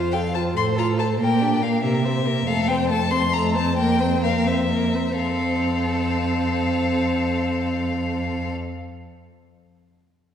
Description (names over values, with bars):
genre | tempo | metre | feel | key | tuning
quick classical-period movement for string quartet | 81-95 BPM (dotted quarters) | 6/8 | straight | F major | A4 = 438 Hz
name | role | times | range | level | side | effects
warm violin | second line | 0.0-8.5 s | G4 to F5 | -29 LUFS | left 3 dB | none
warm viola | accompaniment | 0.0-8.5 s | A3 to A4 | -23 LUFS | equal | none
rich cello | bass | 0.0-8.5 s | F2 to C3 | -25 LUFS | right 2 dB | none
warm violin | melody | 0.1-8.5 s | E5 to C6 | -26 LUFS | left 5 dB | none
room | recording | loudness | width
wet scoring stage reverb, RT60 2.1 s | heard from further back in the room | -19 LUFS | side -8 dB against mid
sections
0.0-5.2 A section; 5.2-8.0 B section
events
slowing down 1.8-5.2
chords
0.0 F; 0.6 F/A; 1.2 Gm/Bb; 1.8 C7; 2.5 F; 3.8 C7/F; 5.2 F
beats
0.56 | 1.20 1.83 | 2.47 3.10 | 3.76 4.45 | 5.18 5.89 | 6.60 7.31